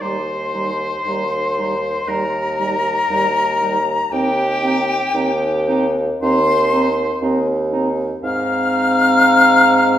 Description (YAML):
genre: classical, slow romantic movement for wind quintet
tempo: 59 BPM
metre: 4/4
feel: rubato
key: Eb major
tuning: A4 = 439 Hz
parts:
  - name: silver concert flute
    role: melody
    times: 0.0-10.0 s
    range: G5 to F6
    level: -18 LUFS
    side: left 3 dB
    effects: none
  - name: clear oboe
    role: second line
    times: 0.0-10.0 s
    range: G4 to F5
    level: -22 LUFS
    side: left 1 dB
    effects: none
  - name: mellow French horn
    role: accompaniment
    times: 0.0-10.0 s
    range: G3 to C4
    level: -23 LUFS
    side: right 1 dB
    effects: none
  - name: warm clarinet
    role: accompaniment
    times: 0.0-10.0 s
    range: Eb4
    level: -25 LUFS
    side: right 2 dB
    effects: none
  - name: mellow bassoon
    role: bass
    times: 0.0-10.0 s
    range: Eb2 to Ab2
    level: -20 LUFS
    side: right 1 dB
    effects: none
room: wet recital hall reverb, RT60 1.4 s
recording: heard from further back in the room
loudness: -15 LUFS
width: side -11 dB against mid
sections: 0.0-10.0 A section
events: none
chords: 0.0 Eb; 4.1 Cm/Eb; 8.2 Ab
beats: | 0.01 1.07 2.09 3.11 | 4.12 5.14 6.22 7.23 | 8.24 9.25